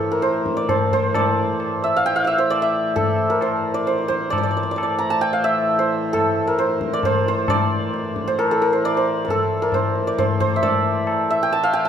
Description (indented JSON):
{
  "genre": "indian classical, Hindustani",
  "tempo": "133 BPM",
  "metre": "7/4",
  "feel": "straight",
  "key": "A raga bhairavi",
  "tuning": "A4 = 439 Hz",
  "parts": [
    { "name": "santur", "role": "melody", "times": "0.0-11.9 s", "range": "A4 to Bb5", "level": "-19 LUFS", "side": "right 1 dB", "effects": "none" },
    { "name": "hand-pumped harmonium", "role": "drone", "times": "0.0-11.9 s", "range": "A2 to E3", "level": "-27 LUFS", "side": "left 1 dB", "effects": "none" },
    { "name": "tabla", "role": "percussion", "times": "0.2-11.9 s", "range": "none", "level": "-25 LUFS", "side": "left 3 dB", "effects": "none" }
  ],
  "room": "moderate concert hall reverb, RT60 2.3 s",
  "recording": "close, detailed microphones",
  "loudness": "-18 LUFS",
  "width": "side -8 dB against mid",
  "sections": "0.0-11.9 A section",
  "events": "none",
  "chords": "none",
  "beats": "0.23 0.69 | 1.15 1.60 2.06 2.51 2.97 3.42 3.88 | 4.33 4.78 5.24 5.69 6.14 6.59 7.04 | 7.49 7.94 8.39 8.84 9.29 9.74 10.18 | 10.63 11.08 11.52"
}